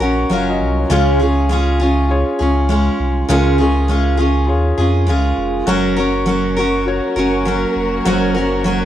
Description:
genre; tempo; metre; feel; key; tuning
acoustic pop; 101 BPM; 4/4; swing 60% on 16ths; Db major; A4 = 440 Hz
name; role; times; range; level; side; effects
felt-muted upright piano; accompaniment; 0.0-8.8 s; F4 to Bb5; -23 LUFS; left 3 dB; cassette tape
picked steel-string acoustic guitar; accompaniment; 0.0-8.8 s; Db3 to Bb4; -16 LUFS; right 1 dB; cassette tape
warm sub bass; bass; 0.0-8.8 s; F1 to F2; -18 LUFS; equal; none
warm studio string section; sustained chords; 5.7-8.8 s; Gb3 to Bb4; -24 LUFS; left 1 dB; cassette tape
room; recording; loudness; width
moderate spring reverb, RT60 1.7 s, small room ambience; home recording on cassette; -13 LUFS; side -11 dB against mid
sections
0.0-8.8 A section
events
felt piano fill 0.0-0.9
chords
0.0 Gb; 0.9 Db; 5.7 Gb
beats
0.31 | 0.91 1.50 2.10 2.70 | 3.29 3.89 4.49 5.08 | 5.68 6.27 6.87 7.46 | 8.06 8.65

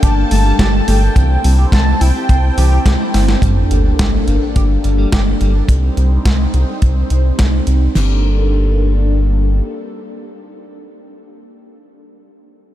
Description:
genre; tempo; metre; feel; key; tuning
synthwave; 106 BPM; 4/4; straight; G minor; A4 = 440 Hz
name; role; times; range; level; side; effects
warm velvety synth lead; melody; 0.0-3.1 s; G5 to A5; -24 LUFS; equal; chorus, cassette tape, tape echo
string machine, violins; second line; 0.0-3.1 s; G5 to A5; -32 LUFS; left 1 dB; ensemble chorus, tape echo
phased analog pad; sustained chords; 0.0-11.0 s; G3 to C5; -22 LUFS; equal; phaser, chorus, sidechain pumping
warbly dusty pluck; arpeggios; 0.0-3.4 s; E3 to G4; -26 LUFS; equal; chorus, tape echo
clean electric guitar; riff; 0.0-8.2 s; G3 to C5; -30 LUFS; right 3 dB; analog chorus, tape echo
round analog bass; bass; 0.0-9.6 s; G1 to C2; -13 LUFS; equal; sidechain pumping
clean 12-bit digital drum machine; drums; 0.0-7.8 s; hi-hat, snare drum; -22 LUFS; equal; none
damped 70s drum kit; drums; 0.0-8.1 s; crash cymbal, kick drum, snare drum; -14 LUFS; equal; none
sub drop; sound effects; 3.4-5.7 s; none; -21 LUFS; equal; none
room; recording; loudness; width
light reverb, digital ambience; none; -11 LUFS; side -13 dB against mid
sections
0.0-3.4 A section; 3.4-8.0 B section; 8.0-10.2 C section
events
drum fill 3.1; impact 3.4-5.7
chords
0.0 Gmadd9; 1.2 C; 3.4 Gmadd9; 5.7 Cm; 8.0 Gmadd9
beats
0.03 0.60 | 1.16 1.73 2.29 2.86 | 3.43 3.99 4.56 5.12 | 5.69 6.26 6.82 7.39 | 7.95 8.52 9.09 9.65

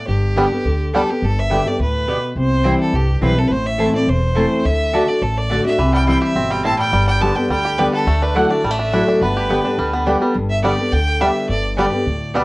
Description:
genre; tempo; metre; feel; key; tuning
bluegrass; 210 BPM; 4/4; straight; G major; A4 = 441 Hz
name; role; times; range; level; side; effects
clear fiddle; melody; 0.0-12.4 s; G4 to A5; -22 LUFS; right 1 dB; none
picked steel-string acoustic guitar; accompaniment; 0.0-12.4 s; E2 to G4; -19 LUFS; left 1 dB; none
upright bass; bass; 0.1-12.4 s; E1 to D2; -20 LUFS; equal; none
bluegrass banjo; arpeggios; 0.4-1.0, 5.8-12.4 s; D3 to G4; -21 LUFS; right 1 dB; none
mandolin; stabs; 0.4-12.4 s; A3 to A5; -22 LUFS; right 1 dB; none
room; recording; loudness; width
moderate studio reverb, RT60 0.6 s; worn, warbling old tape, cassette tape, warbly pitch drift; -15 LUFS; side -22 dB against mid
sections
0.0-1.2 A section; 1.2-10.4 A section; 10.4-12.4 B section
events
none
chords
0.1 G; 2.4 C; 3.5 Am; 4.6 D; 5.8 C; 6.9 G; 8.1 Dadd9; 9.2 G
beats
| 0.08 0.37 0.65 0.94 | 1.22 1.51 1.79 2.08 | 2.36 2.65 2.93 3.22 | 3.50 3.79 4.08 4.36 | 4.65 4.93 5.22 5.50 | 5.79 6.08 6.36 6.65 | 6.93 7.22 7.50 7.79 | 8.07 8.36 8.64 8.93 | 9.21 9.50 9.78 10.07 | 10.35 10.64 10.92 11.21 | 11.49 11.78 12.06 12.35

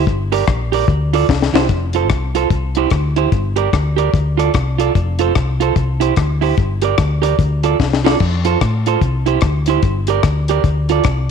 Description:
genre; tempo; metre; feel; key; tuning
ska; 147 BPM; 4/4; swing 60% on 8ths; F major; A4 = 440 Hz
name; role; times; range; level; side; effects
electric guitar at the edge of break-up; accompaniment; 0.0-11.0 s; E4 to D5; -18 LUFS; right 10 dB; none
hollow-body short-scale fingered electric bass; bass; 0.0-11.3 s; F1 to A2; -18 LUFS; left 1 dB; none
deep reggae drum kit; drums; 0.1-11.2 s; crash cymbal, hi-hat, kick drum, rim click, snare drum; -18 LUFS; left 5 dB; none
room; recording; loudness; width
light reverb; 1960s-style stereo; -13 LUFS; side -6 dB against mid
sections
0.0-1.7 A section; 1.7-11.3 B section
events
drum fill 1.3-1.7, 7.8-8.2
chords
0.1 Gm; 0.9 Dm; 1.3 C; 1.7 F; 2.5 C; 3.3 Gm; 4.1 Dm; 4.9 F; 5.8 C; 6.6 Gm; 7.4 Dm; 8.2 F; 9.0 C; 9.8 Gm; 10.6 Dm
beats
| 0.07 0.47 0.88 1.29 | 1.69 2.10 2.51 2.91 | 3.32 3.73 4.13 4.54 | 4.95 5.36 5.76 6.17 | 6.58 6.98 7.39 7.80 | 8.21 8.61 9.02 9.43 | 9.84 10.24 10.65 11.06

